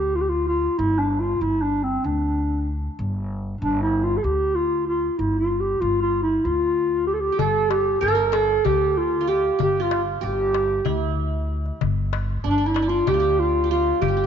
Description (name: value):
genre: Turkish makam ensemble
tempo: 190 BPM (eighths)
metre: 7/8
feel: straight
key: G makam huseyni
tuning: A4 = 438 Hz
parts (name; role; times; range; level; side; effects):
- breathy clarinet; melody; 0.0-14.3 s; C4 to Bb4; -21 LUFS; equal; none
- upright bass; bass; 0.0-14.3 s; G1 to D2; -26 LUFS; equal; none
- qanun; second line; 7.3-14.3 s; D4 to Bb4; -26 LUFS; right 9 dB; none
- darbuka; percussion; 7.4-14.2 s; none; -28 LUFS; left 11 dB; none
room: moderate echo chamber reverb, RT60 2.3 s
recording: 1960s-style stereo with parts hard left and right, nothing above 7.5 kHz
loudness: -20 LUFS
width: side -8 dB against mid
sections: 0.0-14.3 A section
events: none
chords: none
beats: 0.15 0.46 | 0.78 1.09 1.41 1.72 2.03 2.35 2.66 | 2.98 3.29 3.61 3.92 4.24 4.55 4.87 | 5.18 5.50 5.81 6.13 6.44 6.76 7.08 | 7.39 7.71 8.02 8.34 8.65 8.97 9.28 | 9.60 9.91 10.23 10.55 10.86 11.18 11.49 | 11.81 12.12 12.44 12.76 13.07 13.39 13.70 | 14.02